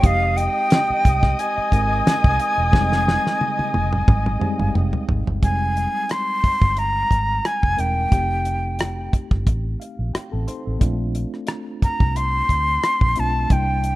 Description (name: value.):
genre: lush 1970s-style soul.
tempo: 89 BPM.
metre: 4/4.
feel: swing 54% on 16ths.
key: F minor.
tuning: A4 = 439 Hz.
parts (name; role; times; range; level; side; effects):
breathy bright jazz flute; melody; 0.0-14.0 s; F5 to C6; -21 LUFS; equal; none.
muted studio string section; second line; 0.0-5.0 s; Eb5 to Eb6; -28 LUFS; left 4 dB; none.
tine electric piano; accompaniment; 0.0-14.0 s; G3 to C6; -29 LUFS; left 1 dB; overdrive, medium stereo tremolo.
vintage muted fingered electric bass; bass; 0.0-14.0 s; E1 to D2; -23 LUFS; equal; none.
damped 70s drum kit; drums; 0.0-14.0 s; hi-hat, kick drum, rim click, snare drum, toms; -19 LUFS; equal; none.
room: small room ambience.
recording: rough home demo mix.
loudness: -18 LUFS.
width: side -17 dB against mid.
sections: 0.0-5.4 A section; 5.4-14.0 B section.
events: drum fill 2.7-5.4; tine electric piano fill 4.1-5.4, 9.5-10.8.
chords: 0.0 Fm9; 8.1 F9; 10.8 Bbmaj9.